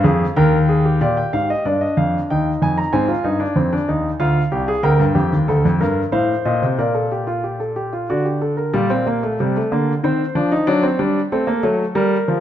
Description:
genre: classical, baroque-style 3-part fugue for grand piano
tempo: 93 BPM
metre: 3/4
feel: straight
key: G minor from 4.9 s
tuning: A4 = 437 Hz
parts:
  - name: warm concert grand piano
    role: solo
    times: 0.0-12.4 s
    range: C2 to Bb5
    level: -16 LUFS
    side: equal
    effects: none
room: moderate recital hall reverb, RT60 1.6 s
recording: close, detailed microphones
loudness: -16 LUFS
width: side -11 dB against mid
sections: 0.0-1.0 A section; 1.0-8.7 B section; 8.7-12.4 C section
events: none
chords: 0.4 Eb; 1.0 Gm; 2.3 Ebadd9; 2.9 Fm; 4.2 Fm69; 4.9 Gm/D; 6.1 Adim; 6.8 Gm/Bb; 8.1 D; 8.7 Gm/Bb; 10.0 Cm/Eb; 10.7 D/F#

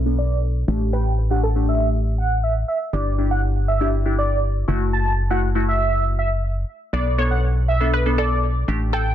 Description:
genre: pop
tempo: 120 BPM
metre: 4/4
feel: straight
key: B minor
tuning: A4 = 437 Hz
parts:
  - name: wide unison pluck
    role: melody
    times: 0.0-2.6, 6.9-9.1 s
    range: A4 to D5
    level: -27 LUFS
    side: left 1 dB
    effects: analog chorus, low-pass filter, tape echo
  - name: organ-like FM bass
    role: bass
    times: 0.0-9.1 s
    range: F#1 to B1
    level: -20 LUFS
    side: equal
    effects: none
  - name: glassy wavetable pluck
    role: accompaniment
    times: 0.1-9.1 s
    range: A3 to A4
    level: -26 LUFS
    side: left 2 dB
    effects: chorus, low-pass filter
  - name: octave-doubled lead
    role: melody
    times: 0.2-9.1 s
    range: D5 to A5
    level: -25 LUFS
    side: right 2 dB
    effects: chorus, phaser, low-pass filter, tape echo
room: light reverb, digital ambience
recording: dense, heavily limited modern master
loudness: -18 LUFS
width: side -11 dB against mid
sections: 0.0-9.1 A section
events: filter sweep 0.0-9.1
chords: 0.0 Bm7; 0.7 A7sus4; 2.9 Em7/G; 4.7 F#m7; 6.9 Bm7

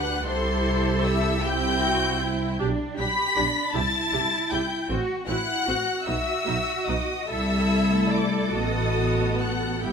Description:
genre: classical, slow romantic movement for string orchestra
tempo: 46-52 BPM (dotted quarters)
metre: 6/8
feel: rubato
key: unclear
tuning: A4 = 441 Hz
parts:
  - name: warm symphonic violin section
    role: melody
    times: 0.0-9.9 s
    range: C6 to B6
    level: -28 LUFS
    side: left 3 dB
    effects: none
  - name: rich studio violin section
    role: second line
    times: 0.0-9.9 s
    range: C5 to B5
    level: -30 LUFS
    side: left 2 dB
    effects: none
  - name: rich symphonic viola section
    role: accompaniment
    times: 0.0-9.9 s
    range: G3 to G4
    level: -29 LUFS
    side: equal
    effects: none
  - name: rich studio cello section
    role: bass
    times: 0.0-9.9 s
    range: D4 to B4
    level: -30 LUFS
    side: right 2 dB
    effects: none
  - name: rich symphonic double bass section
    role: bass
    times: 0.0-9.9 s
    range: G1 to D2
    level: -27 LUFS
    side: right 1 dB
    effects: none
room: light reverb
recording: close, detailed microphones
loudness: -22 LUFS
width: side -6 dB against mid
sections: 0.0-9.9 A section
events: none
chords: 0.3 C; 2.6 G/B; 3.8 C; 4.9 F#dim; 6.1 B; 7.3 C; 8.6 B7/A

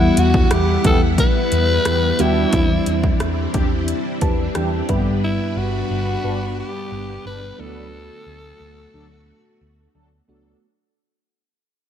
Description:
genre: 1980s-style pop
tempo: 89 BPM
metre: 4/4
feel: straight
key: D mixolydian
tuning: A4 = 440 Hz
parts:
  - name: breathy alto saxophone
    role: melody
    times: 0.0-10.0 s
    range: E4 to B4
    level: -23 LUFS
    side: left 2 dB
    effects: none
  - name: mellow FM electric piano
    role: accompaniment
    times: 0.0-10.6 s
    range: G2 to A5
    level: -24 LUFS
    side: right 2 dB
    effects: chorus
  - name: string machine, full ensemble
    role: sustained chords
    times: 0.0-10.6 s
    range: G3 to F#5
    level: -24 LUFS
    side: left 1 dB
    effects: ensemble chorus
  - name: hollow-body short-scale picked electric bass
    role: bass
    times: 0.0-10.5 s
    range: G1 to E2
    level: -22 LUFS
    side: equal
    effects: none
  - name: 80s electronic pad drums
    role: drums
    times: 0.2-5.0 s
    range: hi-hat, kick drum, rim click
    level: -20 LUFS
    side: equal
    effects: gated reverb
  - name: mellow synth brass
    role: stabs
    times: 0.8-10.6 s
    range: D3 to B4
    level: -29 LUFS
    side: equal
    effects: chorus, phaser
room: little or no reverb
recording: none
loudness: -16 LUFS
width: side -9 dB against mid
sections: 0.0-10.6 A section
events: fade-out 0.0-10.6; FM electric piano fill 3.9-5.2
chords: 0.0 Emadd9; 2.5 Cadd9/E; 4.9 G; 7.6 D6

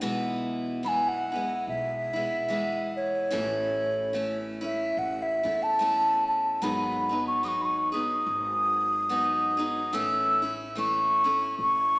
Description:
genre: acoustic folk duo or small band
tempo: 73 BPM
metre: 4/4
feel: swing 58% on 8ths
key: unclear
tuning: A4 = 439 Hz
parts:
  - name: picked steel-string acoustic guitar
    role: accompaniment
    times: 0.0-12.0 s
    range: G#2 to G#4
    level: -32 LUFS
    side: equal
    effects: none
  - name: upright bass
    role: bass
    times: 0.0-12.0 s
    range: G#1 to E2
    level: -43 LUFS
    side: equal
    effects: none
  - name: breathy mellow wooden flute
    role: melody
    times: 0.8-12.0 s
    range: C#5 to E6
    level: -25 LUFS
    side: equal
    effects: none
room: wet scoring stage reverb, RT60 2.1 s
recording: recorded in a church or concert hall, small speaker sound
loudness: -24 LUFS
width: side -26 dB against mid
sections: 0.0-6.6 A section; 6.6-12.0 B section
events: flute solo 0.0-6.6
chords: 0.0 E/B; 3.3 A; 6.6 G#m7; 9.9 A

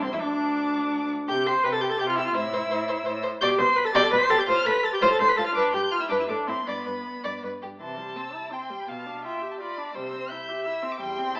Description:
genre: quick classical-period movement for string quartet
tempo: 168 BPM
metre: 3/4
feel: rubato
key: C major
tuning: A4 = 439 Hz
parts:
  - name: rich violin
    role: melody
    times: 0.0-11.4 s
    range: G5 to C7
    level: -30 LUFS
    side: left 1 dB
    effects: none
  - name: rich violin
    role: second line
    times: 0.0-11.4 s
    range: C4 to A5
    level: -28 LUFS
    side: equal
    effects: none
  - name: rich viola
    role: accompaniment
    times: 0.0-11.4 s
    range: E3 to C5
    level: -26 LUFS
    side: equal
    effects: none
  - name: warm cello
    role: bass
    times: 0.0-11.3 s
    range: C2 to C3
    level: -34 LUFS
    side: equal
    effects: none
room: wet recital hall reverb, RT60 1.5 s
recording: recorded in a church or concert hall, AM radio sound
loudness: -22 LUFS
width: side -28 dB against mid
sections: 0.0-7.8 A section; 7.8-11.4 B section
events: none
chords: 0.2 N.C.; 1.3 C5; 2.3 Am; 3.4 G/B; 4.5 F/A; 5.6 G; 6.3 Am; 6.7 G; 7.8 C; 8.9 G7/B; 10.0 C

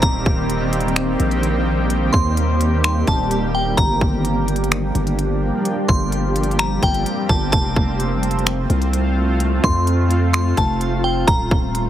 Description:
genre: hip hop, atmospheric cloud-rap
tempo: 128 BPM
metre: 4/4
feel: half-time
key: Eb lydian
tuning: A4 = 440 Hz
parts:
  - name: glassy synth bell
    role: melody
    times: 0.0-11.9 s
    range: G5 to C6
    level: -24 LUFS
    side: equal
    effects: chorus, phaser, digital delay
  - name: granular cloud pad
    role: sustained chords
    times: 0.0-11.9 s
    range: Eb3 to G4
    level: -21 LUFS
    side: equal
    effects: built-in reverb, sidechain pumping
  - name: long sustained 808-style bass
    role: bass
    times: 0.0-11.9 s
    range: Eb1 to F2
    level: -20 LUFS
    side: equal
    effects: none
  - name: trap drum kit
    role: drums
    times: 0.0-11.9 s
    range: finger snaps, hi-hat, kick drum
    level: -19 LUFS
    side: equal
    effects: none
room: little or no reverb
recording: heavily compressed radio sound, multiband compression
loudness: -16 LUFS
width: side -11 dB against mid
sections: 0.0-11.3 A section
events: none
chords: 0.0 Eb6; 3.8 Gm7; 7.5 F; 11.3 Eb6

